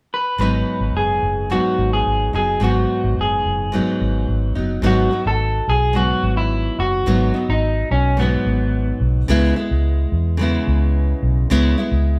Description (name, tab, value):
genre	indie pop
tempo	108 BPM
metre	4/4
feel	straight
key	unclear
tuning	A4 = 442 Hz
part	electric guitar through a small old amp	melody	0.1-9.0 s	B3 to B4	-23 LUFS	equal	none
part	nylon-string guitar	accompaniment	0.4-12.2 s	G#2 to E4	-24 LUFS	equal	vibrato effect
part	vintage muted fingered electric bass	bass	0.4-12.2 s	F#1 to E2	-22 LUFS	equal	none
room	moderate studio reverb, RT60 0.7 s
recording	band playing live in one room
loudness	-19 LUFS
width	mono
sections	0.4-4.8 A section; 4.8-12.2 B section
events	none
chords	0.4 G#m7; 9.3 C#m7